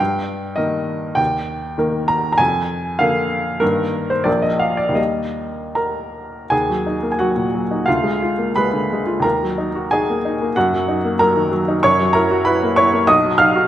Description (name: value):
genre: classical, romantic character piece for solo piano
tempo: 72-101 BPM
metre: 2/4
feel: rubato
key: Eb major, Eb minor from 6.5 s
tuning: A4 = 440 Hz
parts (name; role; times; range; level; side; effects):
- clear upright piano; solo; 0.0-13.7 s; Bb1 to F6; -16 LUFS; equal; none
room: moderate scoring stage reverb, RT60 1.7 s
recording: none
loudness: -16 LUFS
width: side -12 dB against mid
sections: 0.0-6.5 A section; 6.5-13.7 B section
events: none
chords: 0.0 Eb/G; 1.2 Eb; 2.4 Bb7/F; 3.6 Eb/G; 4.3 Bb5; 5.0 Eb; 6.5 Ebm; 7.9 Bb7/D; 9.2 Ebm; 10.6 Ebm/Gb; 11.8 Gb7; 13.1 B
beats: 0.59 | 1.19 1.79 | 2.39 2.99 | 3.61 4.27 | 4.97 5.78 | 6.52 7.20 | 7.87 8.57 | 9.24 9.91 | 10.55 11.19 | 11.81 12.45 | 13.08